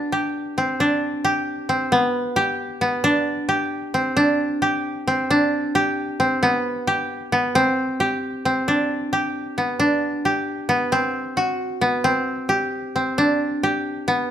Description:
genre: contemporary instrumental, contemporary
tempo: 267 BPM (eighths)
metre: 5/8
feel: straight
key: unclear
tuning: A4 = 440 Hz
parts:
  - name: koto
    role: solo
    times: 0.0-14.3 s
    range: B3 to G4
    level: -19 LUFS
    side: equal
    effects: none
room: light reverb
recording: close, detailed microphones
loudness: -19 LUFS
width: side -10 dB against mid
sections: 0.0-8.7 A section; 8.7-14.3 B section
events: none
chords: 0.0 G5; 1.9 G/B; 3.0 G5; 6.4 G/B; 7.5 C5; 8.7 G; 10.9 B5; 12.0 C5; 13.2 G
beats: 0.13 0.35 0.58 | 0.80 1.02 1.25 1.47 1.69 | 1.92 2.14 2.37 2.59 2.81 | 3.04 3.26 3.49 3.72 3.94 | 4.17 4.40 4.63 4.85 5.08 | 5.30 5.53 5.75 5.97 6.20 | 6.42 6.65 6.87 7.09 7.32 | 7.54 7.77 8.00 8.22 8.45 | 8.68 8.91 9.13 9.36 9.58 | 9.81 10.03 10.26 10.48 10.70 | 10.93 11.15 11.37 11.60 11.82 | 12.05 12.28 12.50 12.73 12.96 | 13.19 13.41 13.64 13.86 14.09

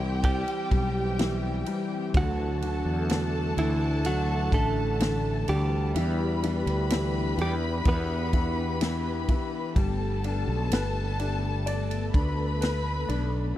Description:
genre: pop ballad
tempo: 63 BPM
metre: 4/4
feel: straight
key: G major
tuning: A4 = 437 Hz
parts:
  - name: warm symphonic violin section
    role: second line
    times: 0.0-13.5 s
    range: G4 to B5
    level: -35 LUFS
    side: left 2 dB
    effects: none
  - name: clear concert grand piano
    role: accompaniment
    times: 0.0-13.6 s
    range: D3 to D5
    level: -33 LUFS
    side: left 4 dB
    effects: none
  - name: warm analog pad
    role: sustained chords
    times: 0.0-13.6 s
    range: D3 to F#5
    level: -36 LUFS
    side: left 1 dB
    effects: chorus
  - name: fretless electric bass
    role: bass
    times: 0.0-13.5 s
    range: G1 to E2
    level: -29 LUFS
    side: equal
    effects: none
  - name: direct-recorded clean electric guitar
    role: melody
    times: 0.2-9.3 s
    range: E3 to B4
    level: -32 LUFS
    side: right 3 dB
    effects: spring reverb
  - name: natural country drum kit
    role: drums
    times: 0.2-13.3 s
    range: kick drum, ride cymbal, snare drum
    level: -28 LUFS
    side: equal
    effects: none
room: little or no reverb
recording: dry, close 1970s-style studio recording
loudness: -24 LUFS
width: side -13 dB against mid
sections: 0.0-13.6 A section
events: none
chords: 0.0 C; 2.1 Dadd9; 6.0 Em7; 9.8 Gadd9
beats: 0.24 1.19 | 2.14 3.10 4.05 5.00 | 5.95 6.91 7.86 8.81 | 9.76 10.71 11.67 12.62 | 13.57

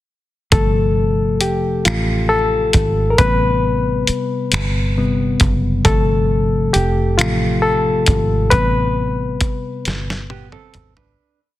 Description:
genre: slow six-eight R&B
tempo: 45 BPM (dotted quarters)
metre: 6/8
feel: straight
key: A minor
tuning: A4 = 439 Hz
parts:
  - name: barky reed electric piano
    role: accompaniment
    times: 0.5-11.2 s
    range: C3 to B4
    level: -17 LUFS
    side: left 2 dB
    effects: none
  - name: fingered electric bass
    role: bass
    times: 0.5-11.2 s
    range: F1 to A1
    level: -19 LUFS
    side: right 1 dB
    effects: none
  - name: dusty soul sampler-style drum kit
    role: drums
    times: 0.5-11.2 s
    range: finger snaps, hi-hat, kick drum, snare drum, toms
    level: -18 LUFS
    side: equal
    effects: soft clipping on snare
  - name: mellow electric guitar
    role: second line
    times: 10.3-11.4 s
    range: B3 to B4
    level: -42 LUFS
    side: right 10 dB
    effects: none
room: light reverb, digital ambience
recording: dense, heavily limited modern master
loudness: -14 LUFS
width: side -15 dB against mid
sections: 0.5-11.2 verse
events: reed electric piano solo 0.5-11.2; fade-out 8.5-11.2; drum fill 9.9-11.2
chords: 0.5 G9sus4; 3.2 Am9; 5.9 G9sus4; 8.5 Am9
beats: | 0.52 1.85 | 3.19 4.52 | 5.85 7.18 | 8.52 9.85

